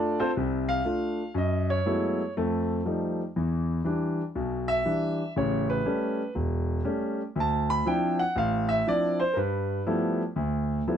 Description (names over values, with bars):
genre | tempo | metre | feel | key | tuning
solo jazz | 120 BPM | 4/4 | swing 66% on 8ths | unclear | A4 = 440 Hz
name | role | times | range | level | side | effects
warm concert grand piano | solo | 0.0-11.0 s | E1 to B5 | -25 LUFS | equal | none
room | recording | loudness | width
light reverb | dark, warm production | -25 LUFS | side -8 dB against mid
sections
0.0-11.0 A section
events
grand piano solo 0.0-11.0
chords
0.0 F6; 1.4 F#m11; 2.4 F9; 3.4 Em7; 5.4 A7; 7.4 Dm9; 9.4 G13